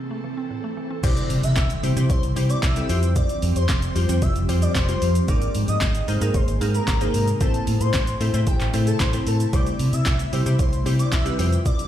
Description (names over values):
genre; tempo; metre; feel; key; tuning
dance-pop; 113 BPM; 4/4; straight; C major; A4 = 440 Hz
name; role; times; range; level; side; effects
glassy wavetable pluck; accompaniment; 0.0-11.9 s; G3 to C5; -28 LUFS; left 2 dB; chorus, sidechain pumping
ethereal airy pad; sustained chords; 0.0-11.9 s; C3 to A4; -31 LUFS; right 1 dB; ensemble chorus, built-in reverb, phaser, sidechain pumping
mallet-like synth pluck; arpeggios; 0.1-1.0 s; A2 to C4; -35 LUFS; right 1 dB; chorus, sidechain pumping, dub echo
airy dreamy lead; melody; 1.0-11.9 s; G4 to E5; -29 LUFS; left 2 dB; chorus, sidechain pumping, dub echo
vintage muted fingered electric bass; bass; 1.0-11.6 s; F1 to C3; -22 LUFS; equal; sidechain pumping
smooth R&B drum kit; drums; 1.0-11.9 s; crash cymbal, handclaps, hi-hat, kick drum, shaker, snare drum; -24 LUFS; equal; overdrive
impact; sound effects; 1.1-3.2 s; none; -34 LUFS; equal; none
room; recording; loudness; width
digital ambience; played on a big sound system in a bare room, large studio reverb; -19 LUFS; side -11 dB against mid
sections
0.0-1.0 A section; 1.0-11.9 B section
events
drop 1.0-11.9; impact 1.0-3.2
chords
0.0 Am; 1.0 C; 2.9 Fsus2; 5.3 Abadd9; 7.4 Am; 9.5 C